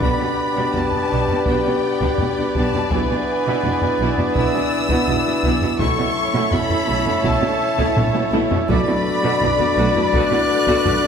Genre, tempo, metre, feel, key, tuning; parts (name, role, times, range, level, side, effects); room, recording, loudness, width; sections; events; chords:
cinematic, epic orchestral film score; 83 BPM; 4/4; straight; A4 = 439 Hz
rich symphonic violin section; melody; 0.0-11.1 s; G5 to F#6; -25 LUFS; left 2 dB
warm symphonic violin section; second line; 0.0-11.1 s; G4 to D5; -28 LUFS; left 2 dB
warm symphonic viola section; accompaniment; 0.0-11.1 s; A3 to F#4; -26 LUFS; right 1 dB
bright trombone section; sustained chords; 0.0-11.1 s; B2 to B3; -29 LUFS; right 5 dB
dark French horn section; sustained chords; 0.0-11.1 s; C#4 to G4; -24 LUFS; left 6 dB
mellow woodwind section; sustained chords; 0.0-11.1 s; A3 to D5; -28 LUFS; equal
mellow trumpet; stabs; 0.0-11.1 s; B4 to E5; -24 LUFS; right 1 dB
clear chamber double bass section; bass; 0.0-10.9 s; B1; -27 LUFS; right 3 dB
warm symphonic cello section; bass; 0.0-11.1 s; B2; -26 LUFS; right 4 dB
taiko ensemble; drums; 0.0-11.1 s; -25 LUFS; equal
timpani; percussion; 5.8-9.7 s; B2; -32 LUFS; left 2 dB
wet concert hall reverb, RT60 2.2 s; -16 LUFS; side -7 dB against mid
0.0-11.1 A section
drum fill 8.0-8.7
0.0 G/B; 2.9 E7/B; 5.8 A/B; 8.7 Bm7